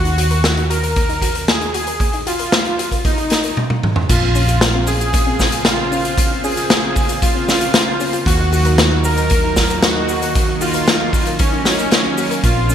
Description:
synthwave; 115 BPM; 4/4; straight; A4 = 440 Hz
soft supersaw; melody; 0.0-12.7 s; Db4 to Bb4; -20 LUFS; right 1 dB; digital delay
soft round pluck; arpeggios; 0.0-12.7 s; Bb3 to Bb4; -27 LUFS; left 4 dB; chorus, vintage 12-bit sampler grit, digital delay
hollow-body short-scale picked electric bass; bass; 0.0-12.7 s; Bb1 to Eb2; -20 LUFS; equal; sidechain pumping
raw garage drum kit; drums; 0.1-12.7 s; cabasa, crash cymbal, hi-hat, snare drum, toms; -18 LUFS; left 1 dB; gated reverb
kick drum; drums; 1.0-12.5 s; -20 LUFS; equal
lush unison pad; sustained chords; 4.1-12.7 s; Db3 to F4; -23 LUFS; equal; chorus, sidechain pumping
light reverb, small room ambience; bright 1980s-style digital production; -14 LUFS; side -9 dB against mid
0.0-4.1 A section; 4.1-12.7 B section
drum fill 3.6-4.1
0.0 Ebm; 4.1 Bbmadd9; 8.3 Ebm

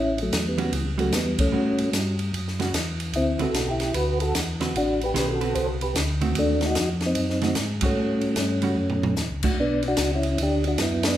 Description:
soul jazz organ trio; 149 BPM; 4/4; swing 64% on 8ths; A mixolydian; A4 = 440 Hz
percussive tonewheel organ; melody; 0.0-11.2 s; E3 to C5; -24 LUFS; equal; chorus vibrato, slow rotary speaker
tonewheel organ; bass; 0.0-11.2 s; A1 to A2; -28 LUFS; equal; stopped rotary speaker
compact cocktail drum kit; drums; 0.2-11.1 s; crash cymbal, hi-hat, kick drum, ride cymbal, snare drum, toms; -28 LUFS; equal
vintage hollow-body jazz guitar; accompaniment; 0.6-9.6 s; D3 to C5; -29 LUFS; right 3 dB
moderate recital hall reverb, RT60 1.3 s; recorded in a church or concert hall; -22 LUFS; side -12 dB against mid
0.0-11.2 A section
band accent 1.3, 7.8, 11.0; drum fill 8.8-9.2
0.0 A6; 3.1 D13; 6.4 D#dim7; 8.0 A6; 9.6 Bm

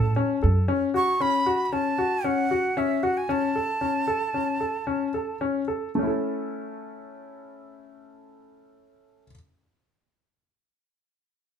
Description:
contemporary instrumental, chamber music in an uneven meter; 114 BPM; 5/4; straight; A major; A4 = 440 Hz
breathy bright jazz flute; melody; 0.0-5.4 s; E5 to C#6; -26 LUFS; right 3 dB
clear baby grand piano; arpeggios; 0.0-9.3 s; A3 to A4; -26 LUFS; left 3 dB
upright bass; bass; 0.0-0.7 s; F#2 to A2; -21 LUFS; right 1 dB
moderate studio reverb, RT60 0.8 s; minimal, uncompressed stereo recording; -23 LUFS; side -8 dB against mid
0.0-6.0 A section; 6.0-8.7 B section
slowing down 1.7-6.0
0.0 A6; 0.7 F#m; 3.3 A

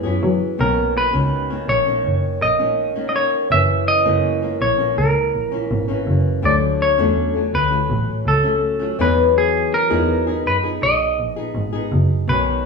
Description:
indie pop, bedroom pop; 82 BPM; 4/4; straight; B major; A4 = 440 Hz
semi-hollow electric guitar; melody; 0.0-12.6 s; G#4 to E5; -19 LUFS; equal
flamenco guitar; accompaniment; 0.0-12.7 s; F#2 to G#4; -22 LUFS; left 4 dB; warbly pitch drift
clear double bass; bass; 0.0-12.7 s; F#1 to F#3; -21 LUFS; equal
wet large studio reverb, RT60 0.9 s; band playing live in one room, small room ambience; -16 LUFS; side -4 dB against mid
0.6-12.7 A section
0.0 F#9sus4; 0.6 Bmaj9; 3.5 F#7; 6.4 Dmaj7; 9.0 Emaj9

